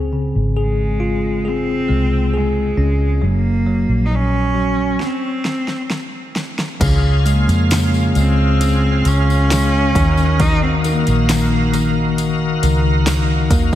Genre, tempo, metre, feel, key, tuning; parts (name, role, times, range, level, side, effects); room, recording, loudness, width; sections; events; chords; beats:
pop ballad; 68 BPM; 4/4; straight; Db major; A4 = 441 Hz
bell-like tine electric piano; accompaniment; 0.0-13.8 s; Db3 to Ab4; -20 LUFS; left 2 dB; fast stereo tremolo
vintage muted fingered electric bass; bass; 0.0-13.8 s; Gb1 to F2; -17 LUFS; equal
rich cello; melody; 0.6-12.6 s; Ab3 to Eb4; -21 LUFS; right 2 dB; tape echo
deep house drum kit; drums; 5.0-13.8 s; crash cymbal, hi-hat, kick drum, snare drum; -21 LUFS; equal; overdrive
bright tonewheel organ; sustained chords; 6.8-13.8 s; Db3 to F5; -23 LUFS; left 1 dB; overdrive, chorus vibrato, slow rotary speaker
tambourine; percussion; 6.8-13.8 s; -32 LUFS; left 8 dB
light reverb, digital ambience; -14 LUFS; side -12 dB against mid
0.0-6.8 A section; 6.8-13.8 B section
drum fill 5.0-6.8; stop 5.0-6.8
0.0 Dbmaj7; 3.2 Gb; 5.0 N.C.; 6.8 Db; 10.0 Ebmadd9
0.56 1.45 2.33 | 3.22 4.11 5.00 5.90 | 6.81 7.71 8.61 9.51 | 10.40 11.29 12.18 13.06